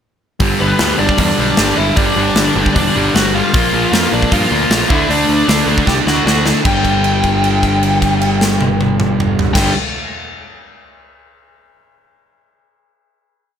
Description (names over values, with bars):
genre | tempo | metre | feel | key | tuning
punk rock | 154 BPM | 4/4 | straight | unclear | A4 = 441 Hz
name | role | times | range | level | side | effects
overdriven electric guitar | riff | 0.4-9.7 s | G2 to D4 | -18 LUFS | right 11 dB | none
sludgy distorted guitar | riff | 0.4-9.7 s | G2 to D4 | -18 LUFS | left 10 dB | overdrive
growling picked electric bass | bass | 0.4-9.7 s | E1 to G2 | -20 LUFS | equal | overdrive
big rock drum kit | drums | 0.4-9.6 s | crash cymbal, hi-hat, kick drum, snare drum, toms | -17 LUFS | equal | none
bluesy overdriven lead guitar | melody | 0.6-9.7 s | B3 to G5 | -18 LUFS | left 2 dB | distortion
room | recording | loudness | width
light reverb | none | -11 LUFS | side -8 dB against mid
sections
0.4-6.7 verse; 6.7-9.8 final chord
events
drum fill 5.9-6.7; held note 6.7-9.6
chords
0.4 G; 3.5 Bb; 4.9 D; 6.7 G5